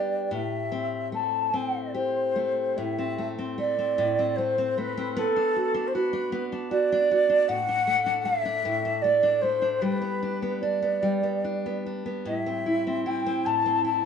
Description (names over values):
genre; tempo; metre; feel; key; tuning
celtic folk, Celtic slow air; 75 BPM; 3/4; uneven beats, rubato; A dorian; A4 = 440 Hz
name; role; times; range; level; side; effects
breathy mellow wooden flute; melody; 0.0-14.1 s; A4 to A5; -25 LUFS; right 1 dB; none
fingerpicked steel-string acoustic guitar; accompaniment; 0.0-14.1 s; A2 to G4; -29 LUFS; left 1 dB; none
room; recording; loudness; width
wet studio reverb, RT60 0.6 s; band playing live in one room, nothing above 10.9 kHz; -24 LUFS; side -7 dB against mid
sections
0.0-2.8 A section; 2.8-14.1 B section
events
none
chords
0.3 Am7; 2.8 Am; 5.2 Bm; 7.5 Dsus2/A; 9.8 G; 12.3 Am